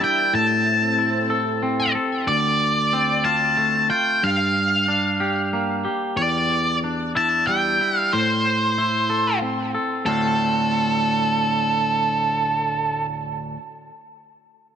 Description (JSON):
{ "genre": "rock", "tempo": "62 BPM (dotted quarters)", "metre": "6/8", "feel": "straight", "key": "D minor", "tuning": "A4 = 441 Hz", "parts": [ { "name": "octave-fuzz lead guitar", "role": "melody", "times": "0.0-13.1 s", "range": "A4 to A5", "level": "-20 LUFS", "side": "right 1 dB", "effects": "distortion, digital delay" }, { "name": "lush unison pad", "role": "sustained chords", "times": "0.0-2.2 s", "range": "C4 to E5", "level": "-31 LUFS", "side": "right 1 dB", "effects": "chorus, phaser" }, { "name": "twangy electric guitar", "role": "arpeggios", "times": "0.0-13.6 s", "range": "D2 to A4", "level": "-23 LUFS", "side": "equal", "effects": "digital delay" } ], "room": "moderate plate reverb, RT60 3.5 s", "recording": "none", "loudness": "-18 LUFS", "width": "side -8 dB against mid", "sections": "0.0-10.1 A section; 10.1-14.0 B section", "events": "none", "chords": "0.3 Am7; 2.3 Dm7; 4.2 Gm7; 6.2 Em7; 8.1 Am; 10.1 Dm7", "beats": "| 0.33 1.30 | 2.27 3.25 | 4.22 5.20 | 6.17 7.14 | 8.12 9.10 | 10.07 11.05 | 12.02 13.00" }